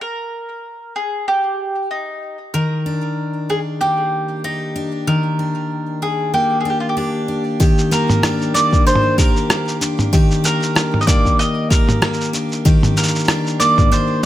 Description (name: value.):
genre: folktronica.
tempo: 95 BPM.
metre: 4/4.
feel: swing 56% on 16ths.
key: Eb major.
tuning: A4 = 440 Hz.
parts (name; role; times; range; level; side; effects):
mandolin; melody; 0.0-14.3 s; D4 to Eb5; -20 LUFS; right 1 dB; vintage 12-bit sampler grit, digital delay.
picked steel-string acoustic guitar; arpeggios; 2.5-14.3 s; Eb3 to G4; -19 LUFS; left 2 dB; digital delay.
electronic kick drum; drums; 7.6-13.9 s; none; -15 LUFS; equal; none.
lo-fi sampler-style drum kit; drums; 7.6-14.1 s; cabasa, rim click, toms; -19 LUFS; right 1 dB; none.
room: light reverb, small room ambience.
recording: none.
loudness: -15 LUFS.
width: side -13 dB against mid.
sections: 0.0-7.6 A section; 7.6-14.3 B section.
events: none.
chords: 0.0 Ebmaj7.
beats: | 0.02 0.65 1.28 1.92 | 2.55 3.18 3.81 4.44 | 5.07 5.71 6.34 6.97 | 7.60 8.23 8.86 9.49 | 10.13 10.76 11.39 12.02 | 12.65 13.28 13.91.